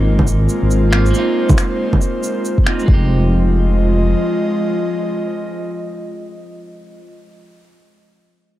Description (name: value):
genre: future garage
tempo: 138 BPM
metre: 4/4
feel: swing 61% on 16ths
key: F minor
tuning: A4 = 440 Hz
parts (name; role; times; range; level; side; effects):
- clean electric guitar; accompaniment; 0.0-7.1 s; Ab3 to G4; -23 LUFS; right 3 dB; vintage 12-bit sampler grit, sidechain pumping, low-pass filter, analog delay
- airy breathy pad; sustained chords; 0.0-7.1 s; F3 to Eb5; -20 LUFS; left 1 dB; chorus, sidechain pumping
- dark detuned saw bass; bass; 0.0-4.1 s; F1 to Ab1; -14 LUFS; equal; sidechain pumping
- electronic bongos, shaker and finger snaps; drums; 0.2-2.9 s; none; -19 LUFS; right 1 dB; none
- electronic kick drum; drums; 0.2-3.0 s; none; -15 LUFS; equal; none
room: light reverb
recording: dark, warm production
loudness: -14 LUFS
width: side -14 dB against mid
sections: 0.0-2.9 A section; 2.9-6.4 B section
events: none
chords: 0.0 Ab69; 2.9 Fm7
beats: 0.27 0.70 | 1.14 1.57 2.01 2.44 | 2.88 3.31 3.75 4.18 | 4.62 5.05 5.49 5.92